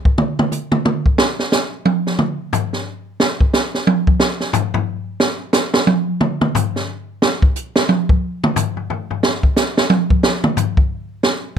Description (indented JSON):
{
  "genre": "jazz",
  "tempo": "179 BPM",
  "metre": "3/4",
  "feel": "swing 62% on 8ths",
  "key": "none",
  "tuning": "none",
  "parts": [
    { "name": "open jazz drum kit", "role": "drums", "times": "0.1-11.3 s", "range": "hi-hat, kick drum, snare drum, toms", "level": "-15 LUFS", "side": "equal", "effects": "none" }
  ],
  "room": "little or no reverb",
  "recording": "close, detailed microphones",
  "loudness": "-15 LUFS",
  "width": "side -8 dB against mid",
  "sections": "0.0-1.2 A section; 1.2-9.2 A section; 9.2-11.6 A section",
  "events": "drum solo 0.0-1.2, 1.2-11.6",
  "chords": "none"
}